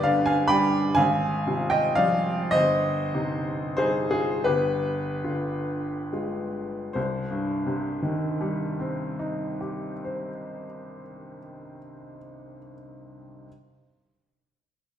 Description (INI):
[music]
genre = classical, romantic nocturne for solo piano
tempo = 21-44 BPM (dotted quarters)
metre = 6/8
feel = rubato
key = C minor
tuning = A4 = 440 Hz
[part]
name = warm upright piano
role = solo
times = 0.0-13.5 s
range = G1 to B5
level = -24 LUFS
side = equal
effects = none
[sound]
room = wet recital hall reverb, RT60 1.5 s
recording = recorded in a church or concert hall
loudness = -23 LUFS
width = side -9 dB against mid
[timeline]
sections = 0.0-7.0 A section; 7.0-11.3 B section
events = slowing down 0.0-7.0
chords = 0.0 G; 1.0 Fm/Ab; 2.5 Cm/G; 4.5 G7b9; 7.0 Cm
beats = 0.97 | 2.55 4.47 | 6.95 9.10